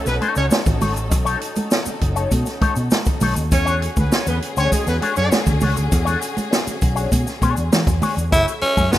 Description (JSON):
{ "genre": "funk", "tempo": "100 BPM", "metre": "4/4", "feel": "straight", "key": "unclear", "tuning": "A4 = 439 Hz", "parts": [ { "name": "mellow horn section", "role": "second line", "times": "0.0-5.3 s", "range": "G#3 to C#5", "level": "-24 LUFS", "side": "equal", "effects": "slapback echo" }, { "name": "warm symphonic string section", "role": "sustained chords", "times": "0.0-9.0 s", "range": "D3 to E5", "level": "-29 LUFS", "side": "left 2 dB", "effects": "none" }, { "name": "electric guitar with an envelope filter", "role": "accompaniment", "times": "0.1-9.0 s", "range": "A3 to C#5", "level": "-26 LUFS", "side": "left 5 dB", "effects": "wah" }, { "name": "fingered electric bass", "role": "bass", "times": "0.1-9.0 s", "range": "F#1 to E3", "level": "-21 LUFS", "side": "equal", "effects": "none" }, { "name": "swinging big-band drum kit", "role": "drums", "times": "0.1-9.0 s", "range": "hi-hat, kick drum, snare drum", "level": "-20 LUFS", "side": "equal", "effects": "none" }, { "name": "congas", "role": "percussion", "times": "0.1-8.9 s", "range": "none", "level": "-26 LUFS", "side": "right 2 dB", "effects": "none" }, { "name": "tube shaker", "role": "percussion", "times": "0.1-9.0 s", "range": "none", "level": "-33 LUFS", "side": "left 4 dB", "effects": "none" }, { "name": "raspy tenor saxophone", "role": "melody", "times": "8.3-9.0 s", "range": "B3 to E4", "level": "-17 LUFS", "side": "right 1 dB", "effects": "slapback echo" } ], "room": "light reverb, small room ambience", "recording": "rough home demo mix", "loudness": "-17 LUFS", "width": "side -14 dB against mid", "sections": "0.0-8.3 A section", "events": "none", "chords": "0.0 B9; 3.5 E13; 8.3 F#m9" }